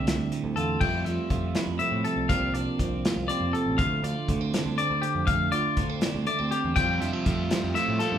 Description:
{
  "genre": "math rock and midwest emo",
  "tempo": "81 BPM (dotted quarters)",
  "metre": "6/8",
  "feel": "straight",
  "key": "D minor",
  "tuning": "A4 = 440 Hz",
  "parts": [
    { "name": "twelve-string electric guitar", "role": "accompaniment", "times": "0.0-8.2 s", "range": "D2 to F4", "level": "-29 LUFS", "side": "right 4 dB", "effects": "none" },
    { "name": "twangy electric guitar", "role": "arpeggios", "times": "0.0-8.2 s", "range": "G4 to G5", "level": "-28 LUFS", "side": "left 4 dB", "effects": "none" },
    { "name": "picked electric bass", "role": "bass", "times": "0.0-8.2 s", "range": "A1 to A2", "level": "-31 LUFS", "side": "equal", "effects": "none" },
    { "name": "modern studio drum kit", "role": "drums", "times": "0.1-8.1 s", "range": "crash cymbal, hi-hat, kick drum, snare drum", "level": "-29 LUFS", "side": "equal", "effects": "none" },
    { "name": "overdriven electric guitar", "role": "riff", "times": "6.8-8.2 s", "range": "F2 to F4", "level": "-32 LUFS", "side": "right 1 dB", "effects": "none" }
  ],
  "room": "wet large studio reverb, RT60 1.2 s",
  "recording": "band playing live in one room",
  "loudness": "-24 LUFS",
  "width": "side -9 dB against mid",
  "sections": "0.8-8.2 A section",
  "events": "none",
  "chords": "0.0 Dm11; 0.8 Fmaj9; 2.3 C9sus4; 3.8 Dm11; 6.8 Fmaj9"
}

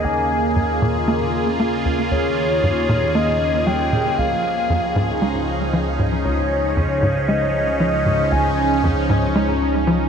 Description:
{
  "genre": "ambient, sequencer-driven space music",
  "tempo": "116 BPM",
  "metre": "4/4",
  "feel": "straight",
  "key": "unclear",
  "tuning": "A4 = 440 Hz",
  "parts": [
    { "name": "soft octave-layered synth lead", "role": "melody", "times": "0.0-8.8 s", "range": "Db5 to Ab5", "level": "-23 LUFS", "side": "left 1 dB", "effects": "chorus, cassette tape, tape echo" },
    { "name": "phased analog pad", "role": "sustained chords", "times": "0.0-10.1 s", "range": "Db3 to Ab4", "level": "-21 LUFS", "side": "equal", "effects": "phaser, chorus" },
    { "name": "tight sequencer bass", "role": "riff", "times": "0.0-10.0 s", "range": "Db2 to Bb3", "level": "-22 LUFS", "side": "equal", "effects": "lush chorus, tape echo" },
    { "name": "fat analog bass", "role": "bass", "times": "0.0-10.1 s", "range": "Db2 to Eb2", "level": "-25 LUFS", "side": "equal", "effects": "none" }
  ],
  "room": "wet huge ambient reverb, RT60 8.5 s",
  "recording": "none",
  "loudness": "-17 LUFS",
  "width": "side -7 dB against mid",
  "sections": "0.0-10.1 A section",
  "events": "filter sweep on analog synth bass 0.0-10.1",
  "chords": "0.0 Eb7sus4; 4.2 Dbadd9"
}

